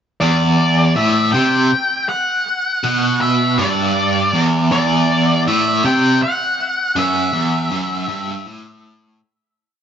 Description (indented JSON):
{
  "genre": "rock",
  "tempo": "53 BPM (dotted quarters)",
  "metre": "6/8",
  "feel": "straight",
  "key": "E minor",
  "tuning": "A4 = 438 Hz",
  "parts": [
    { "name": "octave-fuzz lead guitar", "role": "melody", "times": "0.2-8.4 s", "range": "D5 to G5", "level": "-18 LUFS", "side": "left 1 dB", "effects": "distortion, tape echo" },
    { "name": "biting overdriven guitar", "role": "riff", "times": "0.2-9.2 s", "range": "E2 to C3", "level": "-16 LUFS", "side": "right 1 dB", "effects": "tremolo" }
  ],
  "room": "light reverb, digital ambience",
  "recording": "nothing above 7.7 kHz",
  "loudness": "-14 LUFS",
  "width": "side -8 dB against mid",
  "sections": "0.2-9.2 riff",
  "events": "fade-out 7.0-9.2",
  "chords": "0.2 Em"
}